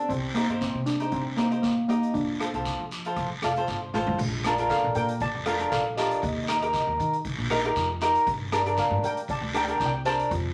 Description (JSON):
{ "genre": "calypso", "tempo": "118 BPM", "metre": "4/4", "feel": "swing 53% on 16ths", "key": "Bb major", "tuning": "A4 = 440 Hz", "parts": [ { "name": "cavaquinho", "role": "accompaniment", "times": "0.0-10.3 s", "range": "D4 to F5", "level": "-29 LUFS", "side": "equal", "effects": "none" }, { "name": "steel pan", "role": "melody", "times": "0.1-10.5 s", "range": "Bb3 to A5", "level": "-30 LUFS", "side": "equal", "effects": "none" }, { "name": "upright bass", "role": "bass", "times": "0.1-10.5 s", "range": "F1 to G3", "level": "-36 LUFS", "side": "equal", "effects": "none" }, { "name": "street-band drum kit", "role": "drums", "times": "0.1-10.4 s", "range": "crash cymbal, hi-hat, kick drum, rim click, snare drum, toms", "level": "-38 LUFS", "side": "equal", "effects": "none" }, { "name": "guiro", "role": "percussion", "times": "0.1-10.5 s", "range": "none", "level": "-39 LUFS", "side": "equal", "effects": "none" } ], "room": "wet studio ambience, RT60 0.5 s", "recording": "none", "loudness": "-26 LUFS", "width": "mono", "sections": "0.0-4.2 A section; 4.2-10.5 B section", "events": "cavaquinho fill 3.2-4.2; drum fill 3.9", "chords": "0.1 Cm; 2.1 F6; 4.2 Bbmaj7; 6.2 Eb; 8.3 Gm" }